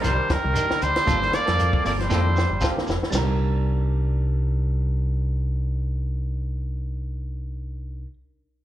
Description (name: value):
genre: afrobeat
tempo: 117 BPM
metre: 4/4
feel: swing 55% on 16ths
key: C dorian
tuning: A4 = 438 Hz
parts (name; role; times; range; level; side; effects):
- bright trumpet; melody; 0.0-2.7 s; Bb4 to D5; -24 LUFS; equal; slapback echo
- raspy tenor saxophone; second line; 0.0-2.7 s; Eb3 to Bb3; -32 LUFS; right 4 dB; slapback echo
- barky tine electric piano; accompaniment; 0.0-8.1 s; Bb3 to Bb4; -35 LUFS; left 2 dB; slapback echo
- electric guitar at the edge of break-up; arpeggios; 0.0-3.3 s; Bb2 to G3; -35 LUFS; left 5 dB; slapback echo
- semi-hollow electric guitar; stabs; 0.0-8.1 s; G3 to Bb4; -32 LUFS; right 7 dB; slapback echo
- compact cocktail drum kit; drums; 0.0-3.3 s; crash cymbal, hi-hat, kick drum, snare drum, toms; -27 LUFS; equal; slapback echo
- shekere; percussion; 0.0-3.3 s; none; -32 LUFS; left 1 dB; none
- fingered electric bass; bass; 0.1-8.0 s; F1 to F2; -24 LUFS; equal; none
room: small room reverb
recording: live gig heard through the venue's PA, club reverb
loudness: -21 LUFS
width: side -13 dB against mid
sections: 0.0-3.1 A section; 3.1-7.2 B section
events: drum fill 2.1-3.1; tine electric piano fill 2.4-3.1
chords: 0.0 Cm9; 1.1 Gm11; 3.1 Cm9